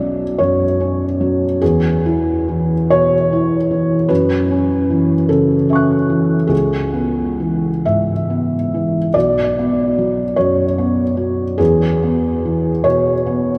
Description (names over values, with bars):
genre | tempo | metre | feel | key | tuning
neoclassical minimalist piano | 43-50 BPM (dotted quarters) | 6/8 | rubato | B dorian | A4 = 440 Hz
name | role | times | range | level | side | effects
felt-muted upright piano | solo | 0.0-13.6 s | B1 to F#6 | -16 LUFS | equal | none
room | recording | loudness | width
wet cathedral reverb, RT60 5.2 s | in a vast, echoing space | -16 LUFS | mono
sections
0.0-13.6 A section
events
none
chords
0.0 Bmadd9; 1.6 E; 4.1 F#m7; 6.5 C#m7; 9.1 Bmadd9; 11.6 E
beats
0.39 | 1.61 2.89 | 4.10 5.29 | 6.51 7.87 | 9.15 10.38 | 11.60 12.86